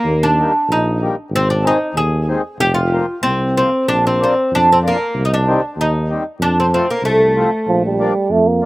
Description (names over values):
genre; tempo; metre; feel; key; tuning
alpine folk, alpine dance band; 95 BPM; 2/4; straight; Bb major; A4 = 440 Hz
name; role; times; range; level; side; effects
oud; melody; 0.0-8.3 s; A3 to Ab4; -16 LUFS; equal; none
mellow tuba; bass; 0.0-8.7 s; F1 to F2; -19 LUFS; equal; none
mellow accordion; accompaniment; 0.4-8.7 s; Eb3 to D4; -21 LUFS; left 2 dB; slapback echo
warm euphonium; second line; 7.7-8.7 s; F3 to Bb3; -14 LUFS; right 3 dB; none
room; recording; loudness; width
little or no reverb; recorded outdoors, with no room sound; -13 LUFS; side -19 dB against mid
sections
0.0-8.7 A section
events
none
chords
0.1 Eb; 1.3 Ab; 2.6 Fsus4; 3.9 Bb; 5.1 Cm; 6.4 F; 7.7 Bb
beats
| 0.05 0.69 | 1.31 1.95 | 2.58 3.23 | 3.87 4.51 | 5.14 5.77 | 6.40 7.03 | 7.66 8.30